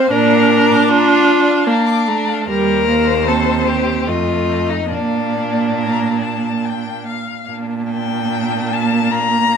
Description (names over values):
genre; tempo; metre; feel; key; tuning
classical, slow romantic movement for string quartet; 69-78 BPM; 3/4; rubato; Bb major; A4 = 440 Hz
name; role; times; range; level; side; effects
rich violin; melody; 0.0-9.6 s; C5 to D6; -22 LUFS; left 8 dB; none
clear violin; second line; 0.0-9.6 s; D4 to C5; -19 LUFS; left 3 dB; none
rich viola; accompaniment; 0.0-9.6 s; G3 to D4; -18 LUFS; right 2 dB; none
clear cello; bass; 0.1-9.6 s; Eb2 to Bb2; -20 LUFS; right 5 dB; none
room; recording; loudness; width
light reverb; minimal, uncompressed stereo recording; -13 LUFS; side -7 dB against mid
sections
0.0-7.5 A section; 7.5-9.6 B section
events
none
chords
0.1 Bb; 2.5 Cm/Eb; 4.1 F7; 4.9 Bb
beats
| 0.11 0.89 1.67 | 2.49 3.28 4.07 | 4.91 5.78 6.64 | 7.50 8.31 9.11